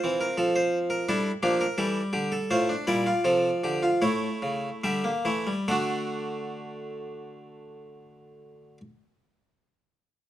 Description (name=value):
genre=classical, baroque-style 4-part fugue for harpsichord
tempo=69-89 BPM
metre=4/4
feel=straight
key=unclear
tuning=A4 = 440 Hz
part: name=harpsichord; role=solo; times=0.0-8.8 s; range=A2 to F#5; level=-25 LUFS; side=equal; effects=none
room=moderate stone room reverb, RT60 1.1 s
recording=none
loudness=-24 LUFS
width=side -12 dB against mid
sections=0.0-5.7 A section; 5.7-9.1 B section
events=slowing down 0.0-5.7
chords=0.0 F; 1.1 Gm; 2.5 Dm/A; 4.0 A7; 5.7 D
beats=0.38 1.07 1.78 | 2.50 3.25 4.03 4.84 | 5.69 6.55 7.42 8.29